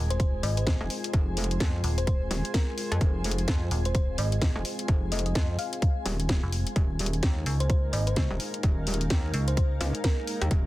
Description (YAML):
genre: bass house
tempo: 128 BPM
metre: 4/4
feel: swing 60% on 16ths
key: F minor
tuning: A4 = 440 Hz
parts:
  - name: dark analog pad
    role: sustained chords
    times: 0.0-10.7 s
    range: Ab3 to Bb4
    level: -38 LUFS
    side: left 1 dB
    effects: chorus, sidechain pumping
  - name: metallic FM bass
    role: bass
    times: 0.0-9.8 s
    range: Eb1 to Db2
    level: -27 LUFS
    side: equal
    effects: sidechain pumping
  - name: granular cloud pad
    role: texture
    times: 0.0-10.7 s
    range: Eb4 to Ab5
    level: -40 LUFS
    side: left 1 dB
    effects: built-in reverb, sidechain pumping
  - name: thumb-piano-like synth pluck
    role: melody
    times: 0.1-10.5 s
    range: Bb4 to F5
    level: -36 LUFS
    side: left 1 dB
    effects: chorus, tape echo
  - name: garage drum kit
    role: drums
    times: 0.1-10.6 s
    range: hi-hat, snare drum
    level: -33 LUFS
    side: left 1 dB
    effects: none
  - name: electronic kick drum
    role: drums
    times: 0.2-10.6 s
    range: none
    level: -25 LUFS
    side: equal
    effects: none
  - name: metallic wobble bass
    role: bass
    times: 0.8-10.7 s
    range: Eb1 to F2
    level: -29 LUFS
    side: equal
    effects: chorus, tube saturation, sidechain pumping
room: little or no reverb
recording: dense, heavily limited modern master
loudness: -24 LUFS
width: side -17 dB against mid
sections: 0.0-10.7 A section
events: none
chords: 0.0 Fm; 6.8 Ebsus4